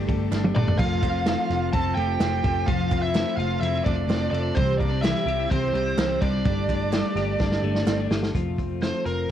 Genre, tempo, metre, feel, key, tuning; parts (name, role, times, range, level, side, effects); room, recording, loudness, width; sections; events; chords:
jangly indie pop; 127 BPM; 4/4; straight; F major; A4 = 443 Hz
picked steel-string acoustic guitar; accompaniment; 0.0-9.3 s; C3 to G4; -32 LUFS; right 10 dB; cassette tape
soft string machine; sustained chords; 0.0-8.3 s; F3 to A5; -41 LUFS; equal
twelve-string electric guitar; arpeggios; 0.0-9.3 s; C3 to G4; -29 LUFS; left 9 dB; cassette tape
vintage muted picked electric bass; bass; 0.0-9.3 s; F1 to C2; -28 LUFS; equal
vintage drum kit; drums; 0.1-9.2 s; crash cymbal, hi-hat, kick drum, ride cymbal, snare drum, toms; -26 LUFS; equal; vintage 12-bit sampler grit, cassette tape
group handclap; percussion; 0.3-8.0 s; -45 LUFS; right 12 dB
biting lead guitar; melody; 0.5-9.3 s; Bb4 to A5; -28 LUFS; right 2 dB; overdrive, cassette tape
clear trumpet; second line; 0.6-8.1 s; C4 to A4; -37 LUFS; right 9 dB; cassette tape
studio reverb; home recording on cassette; -21 LUFS; side -10 dB against mid
0.0-8.3 A section
drum fill 0.3-0.8, 7.4-8.3
0.0 Gsus2; 0.8 F; 4.6 C; 6.5 Gsus2; 8.3 F